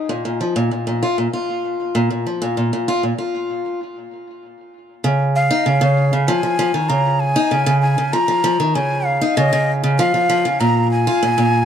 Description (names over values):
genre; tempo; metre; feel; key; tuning
folktronica; 97 BPM; 4/4; straight; Db major; A4 = 441 Hz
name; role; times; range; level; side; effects
picked acoustic archtop guitar; arpeggios; 0.0-11.7 s; Bb2 to F4; -17 LUFS; equal; tape echo
breathy jazz flute; melody; 5.4-11.7 s; Eb5 to Bb5; -19 LUFS; equal; tape echo
room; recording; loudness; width
studio reverb; dry, close 1970s-style studio recording; -15 LUFS; side -8 dB against mid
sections
0.0-5.0 A section; 5.0-11.7 B section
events
break 3.8-5.0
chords
0.1 Bb5; 5.0 Dbadd9; 10.0 Bb5